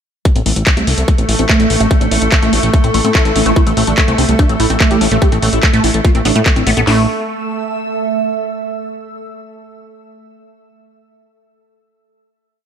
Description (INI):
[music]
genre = psychedelic trance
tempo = 145 BPM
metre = 4/4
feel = straight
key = A minor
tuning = A4 = 441 Hz
[part]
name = evolving wavetable pad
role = sustained chords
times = 0.5-6.9 s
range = A3 to A4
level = -21 LUFS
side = right 1 dB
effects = chorus, built-in reverb, sidechain pumping
[part]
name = liquid acid bass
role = riff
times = 0.3-7.1 s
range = A3 to E4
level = -19 LUFS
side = moving between left 3 dB and right 3 dB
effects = phaser, auto-pan, sidechain pumping, ping-pong delay
[part]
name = drum and bass drum kit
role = drums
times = 0.3-7.0 s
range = hi-hat, kick drum, snare drum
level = -12 LUFS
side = equal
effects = none
[part]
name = drum and bass drum kit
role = drums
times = 0.3-6.9 s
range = handclaps, hi-hat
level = -18 LUFS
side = equal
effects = none
[part]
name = ethereal airy pad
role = texture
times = 2.8-8.5 s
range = A3 to E6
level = -23 LUFS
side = right 5 dB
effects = ensemble chorus, built-in reverb, phaser, sidechain pumping
[part]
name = fat analog bass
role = bass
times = 0.4-7.1 s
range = A1 to A2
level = -16 LUFS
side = equal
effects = none
[part]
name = vowel-sweep wobble bass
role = second line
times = 1.4-3.5 s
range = C4 to E4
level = -29 LUFS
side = left 4 dB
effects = none
[part]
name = wide unison lead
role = melody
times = 3.6-7.0 s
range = A3 to G4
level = -19 LUFS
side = equal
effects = phaser, sidechain pumping, tape echo
[sound]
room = light reverb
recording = none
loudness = -11 LUFS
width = side -8 dB against mid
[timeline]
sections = 0.3-6.9 groove; 6.9-8.5 final chord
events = filter sweep on acid bass 0.3-6.9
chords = 0.3 A5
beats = | 0.25 0.67 1.08 1.49 | 1.91 2.32 2.74 3.15 | 3.56 3.98 4.39 4.80 | 5.22 5.63 6.05 6.46 | 6.87 7.29 7.70 8.12